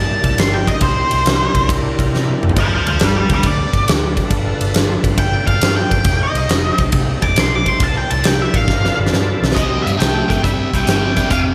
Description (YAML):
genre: blues rock power trio and southern rock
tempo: 137 BPM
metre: 4/4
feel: swing 68% on 8ths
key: unclear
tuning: A4 = 438 Hz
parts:
  - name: octave-fuzz lead guitar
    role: melody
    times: 0.0-11.4 s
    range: C5 to D6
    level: -22 LUFS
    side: equal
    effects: distortion, slapback echo, tape echo
  - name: overdriven tonewheel organ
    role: sustained chords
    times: 0.0-9.6 s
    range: D4 to Eb5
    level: -28 LUFS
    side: equal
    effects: chorus vibrato, slow rotary speaker
  - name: vintage muted picked electric bass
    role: bass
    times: 0.0-11.5 s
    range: F1 to C3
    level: -22 LUFS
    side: equal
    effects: none
  - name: huge arena drum kit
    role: drums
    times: 0.2-11.5 s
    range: hi-hat, kick drum, ride cymbal, snare drum, toms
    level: -19 LUFS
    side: equal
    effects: none
  - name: biting overdriven guitar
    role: riff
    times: 9.6-11.5 s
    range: F2 to A3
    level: -22 LUFS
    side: equal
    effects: phaser
room: moderate lush hall reverb, RT60 1.8 s, small room reverb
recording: big arena sound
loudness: -16 LUFS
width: mono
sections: 0.0-9.6 A section; 9.6-11.5 B section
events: lead electric guitar solo 0.0-9.6; drum fill 2.1-2.6, 8.7-9.6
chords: 0.0 C7; 2.6 G7; 6.1 F7; 7.8 C7; 8.7 G7; 9.6 C5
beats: 0.38 | 0.82 1.25 1.69 2.13 | 2.56 3.00 3.44 3.87 | 4.31 4.75 5.18 5.62 | 6.06 6.50 6.93 7.37 | 7.81 8.24 8.68 9.12 | 9.56 10.00 10.44 10.88 | 11.31